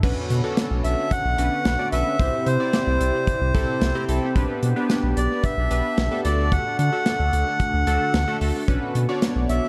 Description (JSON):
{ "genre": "synth-pop", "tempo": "111 BPM", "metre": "4/4", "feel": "straight", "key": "B minor", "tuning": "A4 = 437 Hz", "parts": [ { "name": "warm analog keys", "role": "accompaniment", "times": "0.0-9.7 s", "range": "A3 to B5", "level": "-30 LUFS", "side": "equal", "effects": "chorus, phaser, dub echo" }, { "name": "warm analog pad", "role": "sustained chords", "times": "0.0-9.7 s", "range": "C3 to C#5", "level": "-33 LUFS", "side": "equal", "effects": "chorus" }, { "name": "round analog bass", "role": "bass", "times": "0.0-9.6 s", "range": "B1 to D3", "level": "-25 LUFS", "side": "equal", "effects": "none" }, { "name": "modern studio drum kit", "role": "drums", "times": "0.0-9.6 s", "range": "crash cymbal, hi-hat, kick drum, snare drum", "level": "-28 LUFS", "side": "equal", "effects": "none" }, { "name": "accordion", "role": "melody", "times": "0.8-9.7 s", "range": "C5 to F#5", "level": "-28 LUFS", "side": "equal", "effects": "dub echo" } ], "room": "light reverb, small room ambience", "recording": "echo-heavy mix", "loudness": "-22 LUFS", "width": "mono", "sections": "0.0-9.7 A section", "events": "synth keys fill 3.3-4.4", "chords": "0.0 Bmadd9; 2.2 C; 4.4 G/B; 6.2 D; 8.7 Bmadd9" }